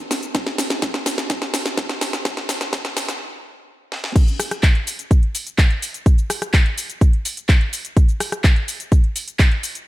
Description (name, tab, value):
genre	EDM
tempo	126 BPM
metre	4/4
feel	straight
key	none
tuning	none
part	house drum kit	drums	0.1-9.8 s	crash cymbal, handclaps, hi-hat, rim click, shaker, snare drum	-22 LUFS	equal	none
part	electronic kick drum	drums	0.3-9.5 s	none	-14 LUFS	equal	none
room	light reverb, digital ambience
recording	high-pass filter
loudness	-17 LUFS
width	side -16 dB against mid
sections	0.0-4.2 A section; 4.2-9.9 B section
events	build-up 0.0-4.2; drum fill 0.0-3.2, 3.9; stop 3.2-4.2; drop 4.2-9.9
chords	none